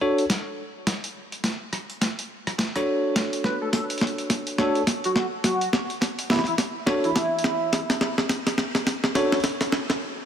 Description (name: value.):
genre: glitch hop.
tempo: 105 BPM.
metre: 4/4.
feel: swing 59% on 16ths.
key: unclear.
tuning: A4 = 441 Hz.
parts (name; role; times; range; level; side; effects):
bell-like tine electric piano; stabs; 0.0-9.4 s; D4 to C#5; -26 LUFS; equal; sidechain pumping, digital delay.
boom bap sampler-style drum kit; drums; 0.2-10.0 s; hi-hat, rim click, snare drum; -24 LUFS; equal; none.
electronic kick drum; drums; 0.3-9.6 s; none; barely audible; none; none.
sync lead; melody; 3.4-7.8 s; E4 to B4; -28 LUFS; right 1 dB; analog chorus, cassette tape, digital delay.
room: moderate lush hall reverb, RT60 2.8 s.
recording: none.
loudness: -22 LUFS.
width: side -8 dB against mid.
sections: 0.0-10.3 A section.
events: build-up 0.0-10.3; drum fill 0.0-10.0; break 10.0.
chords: 0.0 Dmaj7.